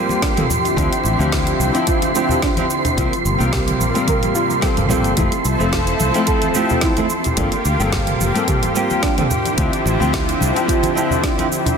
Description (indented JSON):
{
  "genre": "sunset chillout",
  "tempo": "109 BPM",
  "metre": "4/4",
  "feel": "swing 54% on 16ths",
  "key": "unclear",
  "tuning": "A4 = 435 Hz",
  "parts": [
    { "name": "flamenco guitar", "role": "accompaniment", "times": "0.0-11.5 s", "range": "F3 to Bb4", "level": "-22 LUFS", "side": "equal", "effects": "auto-pan, digital delay" },
    { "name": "lush unison pad", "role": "sustained chords", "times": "0.0-11.8 s", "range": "C3 to A4", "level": "-21 LUFS", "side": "left 1 dB", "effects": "chorus" },
    { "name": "wind-like tuned noise texture", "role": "texture", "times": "0.0-11.8 s", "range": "C6", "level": "-25 LUFS", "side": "right 4 dB", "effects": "built-in reverb" },
    { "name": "deep house drum kit", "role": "drums", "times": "0.1-11.8 s", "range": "cabasa, hi-hat, snare drum, toms", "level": "-24 LUFS", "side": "right 1 dB", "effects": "soft clipping on snare" },
    { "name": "congas", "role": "percussion", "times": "0.1-11.8 s", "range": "none", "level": "-27 LUFS", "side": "left 2 dB", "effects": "none" },
    { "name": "soft round pluck", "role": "arpeggios", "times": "0.2-11.5 s", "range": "D4 to Bb4", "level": "-27 LUFS", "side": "right 4 dB", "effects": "lush chorus, digital delay" },
    { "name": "electronic kick drum", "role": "drums", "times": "0.2-11.4 s", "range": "none", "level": "-23 LUFS", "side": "equal", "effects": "none" },
    { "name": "fingered electric bass", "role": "bass", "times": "0.8-10.5 s", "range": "F1 to D2", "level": "-20 LUFS", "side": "equal", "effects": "none" }
  ],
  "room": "moderate lush hall reverb, RT60 1.8 s",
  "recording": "dense, heavily limited modern master",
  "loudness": "-15 LUFS",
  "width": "side -6 dB against mid",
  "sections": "0.0-11.8 A section",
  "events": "none",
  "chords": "0.5 Dm11; 3.0 C7sus4; 5.2 Fmaj7; 7.1 Gm11; 9.3 Dm11"
}